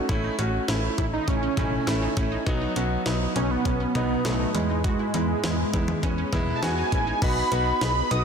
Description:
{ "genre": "synth-pop", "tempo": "101 BPM", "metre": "4/4", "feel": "straight", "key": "unclear", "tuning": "A4 = 440 Hz", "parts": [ { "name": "warm concert grand piano", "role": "accompaniment", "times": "0.0-8.2 s", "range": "F#3 to G#4", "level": "-28 LUFS", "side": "equal", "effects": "none" }, { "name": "wide unison pluck", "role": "arpeggios", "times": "0.0-7.2 s", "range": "C#4 to F#4", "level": "-35 LUFS", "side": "right 2 dB", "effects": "phaser, digital delay" }, { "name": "slap-like FM bass", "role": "bass", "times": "0.1-8.2 s", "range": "A1 to E2", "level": "-28 LUFS", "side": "equal", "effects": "none" }, { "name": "jungle sampler-style drum kit", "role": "drums", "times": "0.1-8.2 s", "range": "crash cymbal, hi-hat, kick drum, snare drum, toms", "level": "-29 LUFS", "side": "left 1 dB", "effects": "none" }, { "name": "wide unison lead", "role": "melody", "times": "1.0-8.2 s", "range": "G#3 to D#6", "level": "-27 LUFS", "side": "right 2 dB", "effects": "digital delay" } ], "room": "moderate lush hall reverb, RT60 2.4 s", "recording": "dense, heavily limited modern master", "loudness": "-22 LUFS", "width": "side -6 dB against mid", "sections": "0.0-7.2 A section; 7.2-8.2 B section", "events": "none", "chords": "0.1 A; 2.5 B; 4.5 E; 7.2 B" }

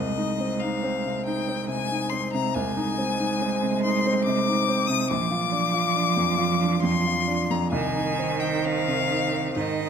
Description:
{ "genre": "classical, slow romantic movement for piano trio", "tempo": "61-73 BPM", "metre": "3/4", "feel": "rubato", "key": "unclear", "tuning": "A4 = 439 Hz", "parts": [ { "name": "clear violin", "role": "melody", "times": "0.0-9.9 s", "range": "Eb5 to Eb6", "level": "-27 LUFS", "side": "left 8 dB", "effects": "none" }, { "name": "clear cello", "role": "second line", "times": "0.0-9.9 s", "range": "Eb3 to Ab3", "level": "-27 LUFS", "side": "right 6 dB", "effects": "none" }, { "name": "warm grand piano", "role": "accompaniment", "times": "0.0-9.9 s", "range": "Bb1 to F4", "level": "-26 LUFS", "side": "equal", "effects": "none" } ], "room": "wet recital hall reverb, RT60 1.4 s", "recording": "none", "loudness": "-22 LUFS", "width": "side -7 dB against mid", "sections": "0.0-9.9 A section", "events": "none", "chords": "0.0 Ab/C; 5.1 Bb; 7.7 Cmadd11" }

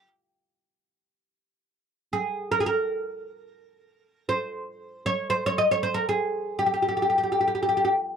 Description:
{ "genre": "Turkish makam ensemble", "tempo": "free time", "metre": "none", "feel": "none", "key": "unclear", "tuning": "A4 = 438 Hz", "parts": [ { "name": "oud", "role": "solo", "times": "0.0-7.9 s", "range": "G4 to Eb5", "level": "-23 LUFS", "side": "equal", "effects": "none" } ], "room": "moderate booth ambience, RT60 0.2 s", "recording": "dry, close 1970s-style studio recording", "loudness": "-23 LUFS", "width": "side -7 dB against mid", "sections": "0.0-8.2 A section", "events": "none", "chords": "none" }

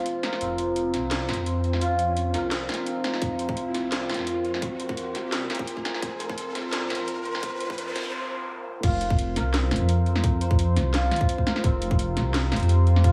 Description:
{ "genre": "half-time drum and bass", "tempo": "171 BPM", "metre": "4/4", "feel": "swing 54% on 16ths, half-time", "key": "unclear", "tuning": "A4 = 437 Hz", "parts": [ { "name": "deep dark ambient pad", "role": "sustained chords", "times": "0.0-13.1 s", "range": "C4 to C5", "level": "-34 LUFS", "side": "equal", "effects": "chorus, built-in reverb, vintage 12-bit sampler grit, sidechain pumping" }, { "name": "santur", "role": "arpeggios", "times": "0.0-13.1 s", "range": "C4 to C5", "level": "-34 LUFS", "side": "equal", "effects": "low-pass filter, tape echo" }, { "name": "riser and noise sweep", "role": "sound effects", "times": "0.4-8.8 s", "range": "none", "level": "-40 LUFS", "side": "equal", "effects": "none" }, { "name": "drum and bass drum kit", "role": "drums", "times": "0.1-13.1 s", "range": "crash cymbal, hi-hat, snare drum", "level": "-33 LUFS", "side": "equal", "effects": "high-pass filter on hats, high-pass filter on snare, high-pass filter on cymbals, high-pass filter on room" }, { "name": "dark detuned saw bass", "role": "bass", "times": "0.4-13.1 s", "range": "F1 to F2", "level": "-27 LUFS", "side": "equal", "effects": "none" }, { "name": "electronic kick drum", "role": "drums", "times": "3.2-13.1 s", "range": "none", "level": "-26 LUFS", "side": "equal", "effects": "none" } ], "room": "moderate plate reverb, RT60 1.0 s", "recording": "dreamy mix soaked in reverb, high-pass filter", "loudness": "-26 LUFS", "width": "mono", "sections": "0.0-8.8 A section; 8.8-13.1 B section", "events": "build-up 0.0-8.8; riser 0.4-8.1; filter sweep on santur 0.0-8.8; filter sweep 0.0-8.8; noise sweep 7.4-8.8; drop 8.8-13.1", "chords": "0.0 F5" }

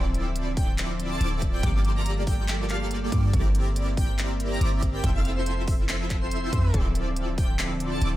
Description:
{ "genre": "future bass", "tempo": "141 BPM", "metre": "4/4", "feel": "half-time", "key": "unclear", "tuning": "A4 = 440 Hz", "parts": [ { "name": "airy breathy pad", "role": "sustained chords", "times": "0.0-8.2 s", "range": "D3 to E5", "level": "-34 LUFS", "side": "equal", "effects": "chorus, sidechain pumping" }, { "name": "wide unison pluck", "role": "arpeggios", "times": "0.0-8.2 s", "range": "D6 to E6", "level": "-41 LUFS", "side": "equal", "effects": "sidechain pumping" }, { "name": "big bright polysynth", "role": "riff", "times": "0.0-8.2 s", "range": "Bb3 to E5", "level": "-32 LUFS", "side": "right 1 dB", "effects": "ensemble chorus, sidechain pumping, tape echo" }, { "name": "warm 808-style bass", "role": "bass", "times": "0.0-8.2 s", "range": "D1 to G2", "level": "-26 LUFS", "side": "equal", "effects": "tube saturation, sidechain pumping" }, { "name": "trap drum kit", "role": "drums", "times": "0.1-8.1 s", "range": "handclaps, hi-hat", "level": "-33 LUFS", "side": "equal", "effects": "none" }, { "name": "airy dreamy lead", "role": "melody", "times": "0.6-8.0 s", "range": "C5 to Bb5", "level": "-37 LUFS", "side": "equal", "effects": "chorus, sidechain pumping, tape echo" }, { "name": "electronic kick drum", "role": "drums", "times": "0.6-7.5 s", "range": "none", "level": "-26 LUFS", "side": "equal", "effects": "none" } ], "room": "light reverb", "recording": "none", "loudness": "-23 LUFS", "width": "side -15 dB against mid", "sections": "0.0-8.2 A section", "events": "none", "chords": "0.0 Dm9; 1.6 Gm9; 3.3 C9/G; 5.0 Fmaj7; 6.7 Dm9" }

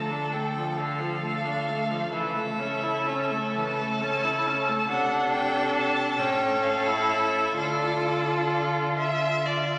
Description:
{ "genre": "classical, slow romantic movement for string quartet", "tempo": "40-46 BPM (dotted quarters)", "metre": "6/8", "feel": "rubato", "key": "D minor", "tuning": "A4 = 436 Hz", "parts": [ { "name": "clear violin", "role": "melody", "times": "0.0-9.0 s", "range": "D5 to A5", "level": "-32 LUFS", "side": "equal", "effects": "none" }, { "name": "clear violin", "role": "second line", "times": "0.0-9.8 s", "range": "A4 to E5", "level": "-32 LUFS", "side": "equal", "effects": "none" }, { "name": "clear viola", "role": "accompaniment", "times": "0.0-9.8 s", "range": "D3 to F4", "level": "-30 LUFS", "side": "equal", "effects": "none" }, { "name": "clear cello", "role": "bass", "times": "0.0-9.8 s", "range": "A2 to D3", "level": "-37 LUFS", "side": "equal", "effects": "none" } ], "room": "wet church reverb, RT60 2.8 s", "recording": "none", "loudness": "-26 LUFS", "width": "mono", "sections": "0.0-9.8 A section", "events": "none", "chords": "0.0 Dm; 2.1 A/C#; 4.9 D5/C; 6.2 A; 7.6 Dm" }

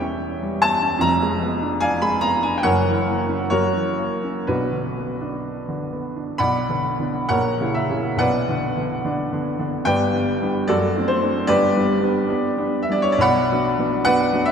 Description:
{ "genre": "classical, romantic character piece for solo piano", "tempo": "60-76 BPM", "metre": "2/4", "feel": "rubato", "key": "B minor", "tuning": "A4 = 442 Hz", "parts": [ { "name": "clear upright piano", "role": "solo", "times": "0.0-14.5 s", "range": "E1 to Cb6", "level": "-18 LUFS", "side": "equal", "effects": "none" } ], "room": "wet church reverb, RT60 3.3 s", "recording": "none", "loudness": "-18 LUFS", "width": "side -7 dB against mid", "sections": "0.0-6.4 A section; 6.4-14.5 B section", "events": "none", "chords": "0.0 C#m7b5/E; 1.0 Fdim7; 2.6 F#7; 4.5 Bm; 7.3 F#7/A#; 8.2 Bm; 9.9 G; 10.7 D7/F#; 11.5 G; 13.2 Bm" }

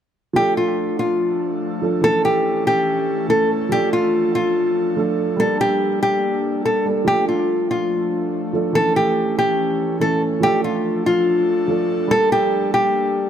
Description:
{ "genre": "hip hop", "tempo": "143 BPM", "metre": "4/4", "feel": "half-time", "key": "D harmonic minor", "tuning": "A4 = 443 Hz", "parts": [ { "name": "dark baby grand piano", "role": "accompaniment", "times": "0.3-13.3 s", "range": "E3 to A4", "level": "-23 LUFS", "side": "right 4 dB", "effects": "none" }, { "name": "nylon-string guitar", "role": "melody", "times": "0.4-13.3 s", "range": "F4 to A4", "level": "-18 LUFS", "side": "left 1 dB", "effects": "none" }, { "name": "airy breathy pad", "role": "sustained chords", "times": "0.7-13.3 s", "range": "E3 to A4", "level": "-26 LUFS", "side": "left 1 dB", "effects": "chorus" } ], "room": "light reverb, small room ambience", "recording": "none", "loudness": "-16 LUFS", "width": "side -9 dB against mid", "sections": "0.4-13.3 A section", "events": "none", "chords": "0.4 Dm; 2.0 A; 3.7 Dm; 5.4 Gmadd9; 7.1 Dm; 8.8 A; 10.4 Dm; 12.1 Gmadd9" }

